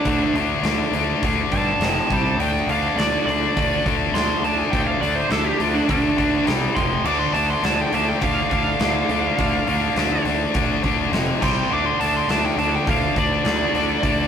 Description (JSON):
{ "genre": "hard rock", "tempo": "103 BPM", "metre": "4/4", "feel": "straight", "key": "D minor", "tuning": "A4 = 440 Hz", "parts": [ { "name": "smooth overdriven lead guitar", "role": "melody", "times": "0.0-14.3 s", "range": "D4 to D6", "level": "-24 LUFS", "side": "right 4 dB", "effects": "none" }, { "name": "heavy high-gain guitar", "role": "riff", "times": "0.0-14.3 s", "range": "F2 to D4", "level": "-21 LUFS", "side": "left 4 dB", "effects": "distortion" }, { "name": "fuzz picked electric bass", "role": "bass", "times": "0.0-14.2 s", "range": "F1 to G2", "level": "-26 LUFS", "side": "right 1 dB", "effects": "overdrive" }, { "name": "huge arena drum kit", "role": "drums", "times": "0.1-14.2 s", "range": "crash cymbal, hi-hat, kick drum, snare drum", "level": "-25 LUFS", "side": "equal", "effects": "none" } ], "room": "moderate stone room reverb, RT60 1.2 s", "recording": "rough rehearsal-room recording, tube saturation", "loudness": "-18 LUFS", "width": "side -8 dB against mid", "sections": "0.0-14.3 A section", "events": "lead electric guitar solo 0.0-14.3", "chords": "0.0 D5; 1.8 F5; 2.1 C5; 2.4 D5; 6.5 C5; 6.8 F5; 7.1 Dm; 11.1 F5; 11.4 C5; 11.7 D5" }